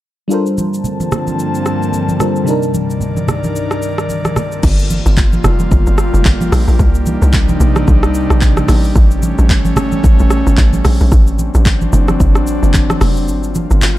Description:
amapiano; 111 BPM; 4/4; swing 58% on 16ths; G minor; A4 = 439 Hz
mellow FM electric piano; accompaniment; 0.3-4.4 s; C3 to C5; -18 LUFS; left 1 dB; chorus, phaser
airy breathy pad; sustained chords; 0.6-14.0 s; C2 to A5; -18 LUFS; equal; chorus
deep house drum kit; drums; 0.3-14.0 s; crash cymbal, handclaps, hi-hat, kick drum, rim click, shaker; -15 LUFS; equal
congas; percussion; 0.6-14.0 s; -20 LUFS; right 2 dB
tight log drum bass; bass; 4.6-14.0 s; F1 to C2; -12 LUFS; equal
little or no reverb; dark, warm production; -11 LUFS; side -15 dB against mid
0.3-4.6 A section; 4.6-14.0 B section
drop 4.6-14.0; kick muted 13.3-14.0
0.3 Gm11; 2.5 Cm9; 4.4 Gm11; 4.6 Gm7; 6.8 Cm9; 8.7 A7; 11.1 D7; 13.3 Gm7

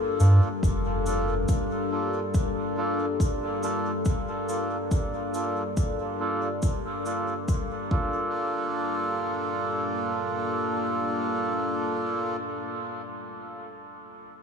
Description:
ambient dub; 70 BPM; 4/4; swing 53% on 16ths; G minor; A4 = 439 Hz
deep dark ambient pad; sustained chords; 0.0-12.5 s; G3 to Bb4; -30 LUFS; left 2 dB; chorus, built-in reverb
melodica; stabs; 0.2-12.4 s; Bb3 to A4; -29 LUFS; right 2 dB; low-pass filter, dub echo
soft dub sub bass; bass; 0.2-1.4 s; F1 to G2; -21 LUFS; equal
cabasa; drums; 0.2-7.7 s; -45 LUFS; left 1 dB; dub echo
electronic kick drum; drums; 0.6-8.1 s; -25 LUFS; equal; overdrive
moderate huge ambient reverb, RT60 4.3 s; small room ambience; -25 LUFS; side -6 dB against mid
0.0-8.3 A section; 8.3-11.8 B section
0.0 Gm7

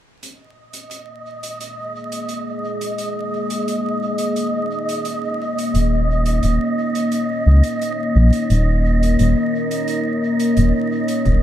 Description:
ambient dub; 87 BPM; 4/4; straight; A4 = 441 Hz
deep dark ambient pad; sustained chords; 1.9-11.4 s; Bb3 to Db5; -21 LUFS; left 1 dB; chorus, built-in reverb
hi-hat; drums; 0.2-11.4 s; -35 LUFS; right 2 dB
wind-like tuned noise texture; texture; 0.9-11.4 s; Eb5; -25 LUFS; right 2 dB; built-in reverb
round analog bass; bass; 5.7-11.4 s; Eb1 to Db2; -14 LUFS; equal
electronic kick drum; drums; 11.3-11.4 s; -24 LUFS; equal
light reverb, digital ambience; echo-heavy mix, vinyl crackle; -17 LUFS; side -11 dB against mid
0.2-11.3 A section
0.2 Eb5

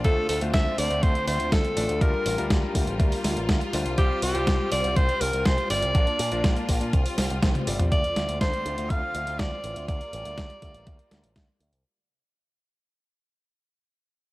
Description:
italo disco; 122 BPM; 4/4; straight; D minor; A4 = 440 Hz
bright alto saxophone; melody; 0.0-11.3 s; G4 to F5; -28 LUFS; equal; tape echo
warm studio string section; sustained chords; 0.0-11.8 s; D3 to F4; -33 LUFS; left 1 dB
clear electric grand piano; stabs; 0.0-7.9 s; G3 to D5; -33 LUFS; left 3 dB
picked electric bass with an envelope filter; bass; 0.0-11.8 s; G1 to Bb2; -30 LUFS; equal
clean 12-bit digital drum machine; drums; 0.0-11.8 s; hi-hat, snare drum, toms; -29 LUFS; equal; overdrive
electronic kick drum; drums; 0.0-11.5 s; -24 LUFS; equal; overdrive
digital ambience; dry, gritty hardware recording, vinyl crackle; -22 LUFS; side -19 dB against mid
0.0-7.9 A section; 7.9-11.8 B section
drum fill 7.4-7.9; band accent 7.4; fade-out 7.9-11.8
0.0 Dm7; 2.0 Gm7; 4.0 Csus4; 5.9 Bb; 6.9 Csus4; 7.9 Dm7; 9.9 Gm7

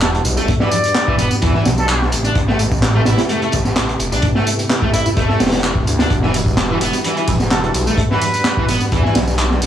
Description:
breakbeat, breaks; 128 BPM; 4/4; straight; E minor; A4 = 441 Hz
trumpet with plunger mute; melody; 0.0-2.1, 7.5-8.8 s; A4 to D5; -22 LUFS; equal; telephone sound, tape echo
tonewheel organ; sustained chords; 0.0-9.7 s; C3 to G4; -24 LUFS; equal; chorus vibrato, slow rotary speaker, sidechain pumping
phased detuned saw bass; bass; 0.0-9.7 s; E1 to E2; -20 LUFS; equal; phaser
crunchy breakbeat drum kit; drums; 0.0-9.7 s; hi-hat, kick drum, snare drum; -18 LUFS; equal
house drum kit; drums; 0.0-9.7 s; handclaps, ride cymbal, tambourine; -23 LUFS; equal
fuzz guitar; riff; 0.4-9.1 s; E3 to E4; -21 LUFS; equal; distortion, tube saturation, tape echo
light reverb, small room ambience; dry, gritty hardware recording, cassette tape; -14 LUFS; side -10 dB against mid
0.0-9.7 A section
0.0 Em9; 2.1 Am9; 6.1 Em9

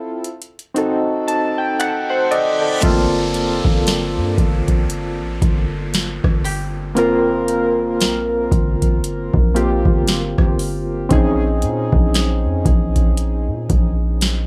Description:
contemporary R&B; 58 BPM; 4/4; swing 58% on 16ths; G minor; A4 = 440 Hz
soft electric-piano-like synth keys; accompaniment; 0.0-14.5 s; A3 to A5; -22 LUFS; equal; chorus, tremolo
booming analog drum machine; drums; 0.2-14.5 s; finger snaps, hi-hat, kick drum, rim click, snare drum; -20 LUFS; equal
reverse cymbal and downlifter; sound effects; 2.0-11.1 s; -33 LUFS; equal
warm 808-style bass; bass; 2.8-14.5 s; G1 to Bb2; -22 LUFS; equal; tube saturation
koto; texture; 2.8-14.4 s; F4 to Ab4; -34 LUFS; equal; analog delay
little or no reverb; dry, gritty hardware recording; -18 LUFS; mono
0.0-2.8 A section; 2.8-14.5 B section
break 0.0-2.8; synth keys fill 0.8-2.8; reverse cymbal 2.0-2.8
0.2 N.C.; 0.8 Cdim7; 2.8 Gm11; 11.1 Bbm11

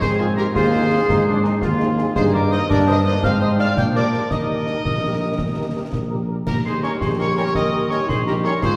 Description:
military-style march for wind band; 111 BPM (dotted quarters); 6/8; straight; Eb major; A4 = 439 Hz
clear trumpet section; melody; 0.0-8.8 s; Ab4 to G5; -30 LUFS; equal
mellow piccolo; second line; 0.0-8.7 s; Ab5 to G6; -31 LUFS; equal
warm woodwind section; second line; 0.0-8.7 s; F4 to D5; -28 LUFS; equal
warm trombone section; sustained chords; 0.0-8.5 s; G3 to F4; -29 LUFS; equal
mellow tuba; bass; 0.0-8.8 s; Bb1 to Bb2; -24 LUFS; equal
concert snare drum, clash cymbals and concert bass drum; drums; 0.0-8.8 s; -28 LUFS; equal
warm French horn section; accompaniment; 0.2-8.5 s; G3 to C5; -34 LUFS; equal
glockenspiel with soft plastic mallets; second line; 6.5-8.8 s; Bb5 to Eb6; -30 LUFS; equal
mellow euphonium; second line; 6.5-8.8 s; Eb4 to G4; -28 LUFS; equal
wet concert hall reverb, RT60 2.0 s; heard from further back in the room; -19 LUFS; mono
0.0-6.5 A section; 6.5-8.8 A section
0.0 Ab; 2.2 Eb/G; 3.2 Ab6; 3.8 Bb13; 4.3 Eb; 6.5 Eb7

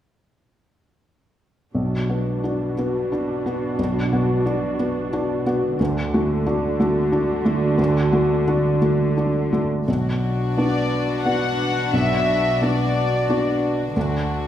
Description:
cinematic; 89 BPM; 3/4; rubato; B minor; A4 = 441 Hz
dark symphonic viola section; accompaniment; 1.7-9.6 s; D4 to F#4; -26 LUFS; right 1 dB
felt-muted upright piano; accompaniment; 1.7-14.5 s; B1 to F#4; -21 LUFS; left 1 dB
warm symphonic cello section; bass; 1.7-14.5 s; B2 to D3; -26 LUFS; right 2 dB
warm symphonic violin section; second line; 9.9-14.5 s; D4 to F#4; -26 LUFS; left 2 dB
warm symphonic violin section; melody; 10.6-13.6 s; D5 to F#5; -23 LUFS; left 2 dB
wet recital hall reverb, RT60 1.3 s; recorded in a church or concert hall; -19 LUFS; side -11 dB against mid
1.7-9.9 A section; 9.9-14.5 B section
1.7 Bm; 5.8 D; 9.9 Bm; 14.0 D

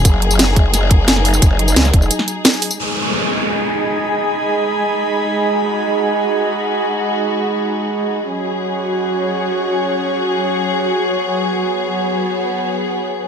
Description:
dark technical drum and bass; free time; G# minor; A4 = 440 Hz
dark studio string section; sustained chords; 0.0-13.3 s; F#3 to G#4; -20 LUFS; left 2 dB; sidechain pumping, low-pass filter
growl bass; bass; 0.1-2.1 s; E1 to C#2; -16 LUFS; equal; chorus, tube saturation, sidechain pumping
drum and bass drum kit; drums; 0.1-2.8 s; hi-hat, snare drum, tambourine; -15 LUFS; right 1 dB; overdrive
electronic kick drum; drums; 0.1-2.0 s; -12 LUFS; equal; overdrive
downlifter; sound effects; 2.8-5.5 s; -21 LUFS; equal
airy breathy pad; texture; 2.8-13.3 s; F#4 to B5; -19 LUFS; right 2 dB; chorus, sidechain pumping
moderate digital room reverb, RT60 0.9 s, digital ambience; -14 LUFS; side -7 dB against mid
0.0-2.8 A section; 2.8-13.3 B section
drop 0.0-2.8; break 2.1-2.8; filter sweep on string section 2.8-13.3
0.0 F#5; 2.8 G#m; 8.3 F#5

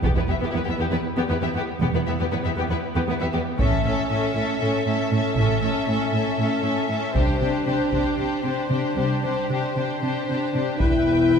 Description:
cinematic, epic orchestral film score; 235 BPM (eighths); 7/8; straight; E minor; A4 = 441 Hz
rich symphonic violin section; second line; 0.0-11.4 s; B3 to E5; -30 LUFS; left 3 dB
warm symphonic viola section; accompaniment; 0.0-11.4 s; B3 to B4; -27 LUFS; right 1 dB
rich chamber double bass section; bass; 0.0-11.4 s; E1 to C2; -29 LUFS; right 3 dB
rich symphonic cello section; bass; 0.0-11.4 s; E2 to C3; -26 LUFS; right 2 dB
solo taiko drums; drums; 0.0-11.4 s; -26 LUFS; equal
rich symphonic violin section; melody; 0.1-11.4 s; G4 to G5; -28 LUFS; left 5 dB
mellow French horn section; sustained chords; 9.7-11.4 s; C4 to E4; -22 LUFS; left 4 dB
wet scoring stage reverb, RT60 1.9 s; heard from further back in the room; -21 LUFS; side -6 dB against mid
0.0-10.8 A section
build-up 0.0-10.8
0.0 Em; 3.6 A; 7.2 Csus2; 10.8 Em

